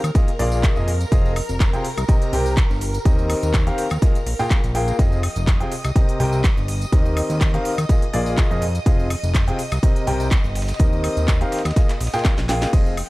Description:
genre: piano house.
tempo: 124 BPM.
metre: 4/4.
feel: swing 54% on 16ths.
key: unclear.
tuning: A4 = 439 Hz.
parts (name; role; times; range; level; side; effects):
string machine, violins; sustained chords; 0.0-13.1 s; Bb4 to G6; -32 LUFS; equal; ensemble chorus, sidechain pumping.
fat analog bass; bass; 0.0-13.0 s; F1 to F2; -22 LUFS; equal; tube saturation, sidechain pumping.
house drum kit; drums; 0.0-13.1 s; crash cymbal, handclaps, hi-hat, shaker, snare drum, woodblock; -29 LUFS; equal; small room ambience.
tambourine; percussion; 0.0-13.0 s; none; -42 LUFS; equal; none.
clear concert grand piano; riff; 0.1-12.9 s; Bb2 to G5; -24 LUFS; left 1 dB; sidechain pumping, analog delay.
electronic kick drum; drums; 0.1-12.8 s; none; -17 LUFS; equal; small room ambience.
dusty soul sampler-style drum kit; drums; 0.2-13.1 s; ride cymbal, snare drum; -41 LUFS; right 2 dB; none.
room: little or no reverb.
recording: dry, gritty hardware recording.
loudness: -17 LUFS.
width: side -20 dB against mid.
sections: 0.0-13.1 A section.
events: drum fill 12.2-12.7.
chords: 0.2 Bb7sus4; 1.1 Fm7; 1.8 Cm7; 3.1 Eb6; 4.0 Bb7sus4; 5.0 Fm7; 5.7 Cm7; 6.9 Eb6; 7.9 Bb7sus4; 8.9 Fm7; 9.6 Cm7; 10.8 Eb6; 11.8 Bb7sus4.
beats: 0.15 0.64 | 1.12 1.60 2.09 2.57 | 3.06 3.54 4.02 4.51 | 4.99 5.47 5.96 6.44 | 6.93 7.41 7.89 8.38 | 8.86 9.35 9.83 10.31 | 10.80 11.28 11.76 12.25 | 12.73.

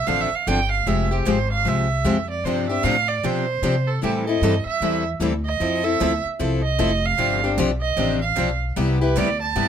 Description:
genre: acoustic string swing (jazz manouche).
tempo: 152 BPM.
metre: 4/4.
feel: swing 62% on 8ths.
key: unclear.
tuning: A4 = 441 Hz.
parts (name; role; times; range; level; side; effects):
warm violin; second line; 0.0-9.7 s; G4 to A5; -23 LUFS; right 6 dB; none.
upright bass; bass; 0.0-9.7 s; F1 to C3; -24 LUFS; equal; none.
picked steel-string acoustic guitar; accompaniment; 0.1-9.7 s; C3 to A4; -24 LUFS; left 7 dB; none.
picked steel-string acoustic guitar; accompaniment; 0.1-9.7 s; C3 to A4; -29 LUFS; right 6 dB; none.
room: light reverb.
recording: close, detailed microphones.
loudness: -19 LUFS.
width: side -8 dB against mid.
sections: 0.0-9.7 A section.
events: violin solo 0.0-9.7.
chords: 0.0 Dm7; 0.9 Fmadd9; 2.4 G7sus4; 4.0 Am7; 5.6 Fmaj7; 7.2 G7sus4; 8.8 Cmaj9.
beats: 0.07 0.47 | 0.86 1.26 1.65 2.05 | 2.44 2.84 3.23 3.63 | 4.03 4.42 4.82 5.21 | 5.61 6.00 6.40 6.79 | 7.19 7.58 7.98 8.37 | 8.77 9.16 9.56.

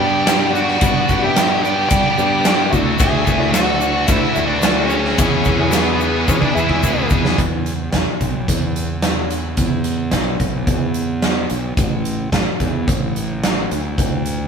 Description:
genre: classic rock.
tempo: 110 BPM.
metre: 4/4.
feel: straight.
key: unclear.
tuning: A4 = 438 Hz.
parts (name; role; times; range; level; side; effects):
octave-fuzz lead guitar; melody; 0.0-7.1 s; B3 to G#4; -20 LUFS; right 1 dB; distortion.
biting lead guitar; second line; 0.0-7.1 s; G#4 to E5; -26 LUFS; equal; overdrive.
honky-tonk upright piano; accompaniment; 0.0-7.2 s; G3 to B4; -26 LUFS; left 4 dB; none.
bright tonewheel organ; sustained chords; 0.0-7.4 s; G3 to E5; -30 LUFS; left 1 dB; none.
tight distorted guitar; riff; 0.0-7.4 s; E2 to G#4; -21 LUFS; equal; distortion.
fuzz fingered electric bass; bass; 0.0-14.5 s; A1 to G3; -22 LUFS; equal; overdrive.
big rock drum kit; drums; 0.3-14.4 s; hi-hat, kick drum, ride cymbal, snare drum; -18 LUFS; right 1 dB; none.
egg shaker; percussion; 0.3-7.2 s; none; -33 LUFS; left 6 dB; none.
room: light reverb.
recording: band playing live in one room.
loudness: -15 LUFS.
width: side -6 dB against mid.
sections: 0.0-7.4 A section; 7.4-14.5 B section.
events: drum fill 6.3-7.4.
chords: 0.0 G; 2.7 Dadd9; 5.2 E; 7.4 E5; 11.8 A5; 13.7 N.C..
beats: 0.28 | 0.82 1.37 1.92 2.46 | 3.01 3.56 4.10 4.65 | 5.19 5.74 6.29 6.83 | 7.38 7.93 8.48 9.03 | 9.58 10.13 10.68 11.23 | 11.78 12.33 12.88 13.43 | 13.98.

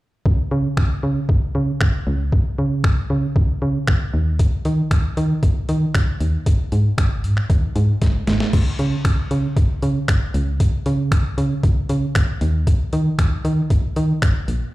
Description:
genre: dance-pop.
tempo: 116 BPM.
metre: 4/4.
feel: straight.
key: unclear.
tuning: A4 = 440 Hz.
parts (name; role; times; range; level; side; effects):
solid FM bass; bass; 0.3-14.6 s; G1 to Eb3; -20 LUFS; equal; sidechain pumping.
boom bap sampler-style drum kit; drums; 0.3-14.6 s; crash cymbal, finger snaps, hi-hat, kick drum, snare drum; -18 LUFS; equal; overdrive.
room: digital ambience.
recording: played on a big sound system in a bare room, large studio reverb.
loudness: -17 LUFS.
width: side -18 dB against mid.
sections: 0.3-14.7 A section.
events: drum fill 8.0-8.5.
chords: none.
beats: | 0.26 0.77 1.29 1.81 | 2.33 2.84 3.36 3.88 | 4.39 4.91 5.43 5.95 | 6.46 6.98 7.50 8.02 | 8.53 9.05 9.57 10.08 | 10.60 11.12 11.64 12.15 | 12.67 13.19 13.71 14.22.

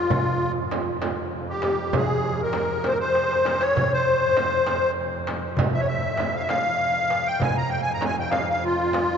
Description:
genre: Arabic maqam ensemble.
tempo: 66 BPM (dotted quarters).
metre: 6/8.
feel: straight.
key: F maqam nahawand.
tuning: A4 = 440 Hz.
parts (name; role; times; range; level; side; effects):
musette accordion; melody; 0.0-9.2 s; F4 to Bb5; -22 LUFS; left 1 dB; none.
clear double bass; drone; 0.0-9.2 s; F2; -33 LUFS; right 2 dB; none.
darbuka; percussion; 0.1-9.1 s; none; -30 LUFS; equal; none.
frame drum; percussion; 0.1-9.1 s; none; -29 LUFS; right 2 dB; none.
room: wet cathedral reverb, RT60 5.5 s.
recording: recorded in a church or concert hall, nothing above 7.8 kHz.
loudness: -21 LUFS.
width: side -7 dB against mid.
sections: 0.0-9.2 A section.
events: drum fill 3.2-3.8.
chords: none.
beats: | 0.11 1.02 | 1.94 2.85 | 3.76 4.67 | 5.59 6.50 | 7.41 8.32.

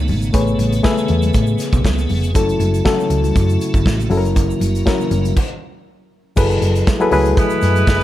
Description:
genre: disco.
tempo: 119 BPM.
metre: 4/4.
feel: straight.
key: F# minor.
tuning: A4 = 440 Hz.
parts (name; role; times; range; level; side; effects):
reed electric piano; accompaniment; 0.0-8.0 s; B2 to E5; -19 LUFS; left 3 dB; none.
tonewheel organ; sustained chords; 0.0-5.4 s; C#3 to G#4; -24 LUFS; right 2 dB; chorus vibrato, slow rotary speaker.
hollow-body short-scale fingered electric bass; bass; 0.0-8.0 s; E#1 to A2; -18 LUFS; equal; none.
modern studio drum kit; drums; 0.1-8.0 s; crash cymbal, hi-hat, kick drum, snare drum; -19 LUFS; right 1 dB; none.
congas; percussion; 0.1-8.0 s; none; -29 LUFS; left 4 dB; none.
egg shaker; percussion; 0.2-8.0 s; none; -42 LUFS; right 9 dB; none.
clear horn section; stabs; 7.4-8.0 s; G#3 to B4; -18 LUFS; right 2 dB; none.
room: light reverb.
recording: none.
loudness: -14 LUFS.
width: side -14 dB against mid.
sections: 0.0-6.4 A section; 6.4-8.0 B section.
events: stop 5.4-6.4.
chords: 0.3 Amaj9; 2.3 F#m7; 4.1 F#7; 5.4 N.C.; 6.4 F#m11.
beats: | 0.34 0.84 1.34 1.85 | 2.35 2.85 3.35 3.86 | 4.36 4.86 5.36 5.87 | 6.37 6.87 7.37 7.87.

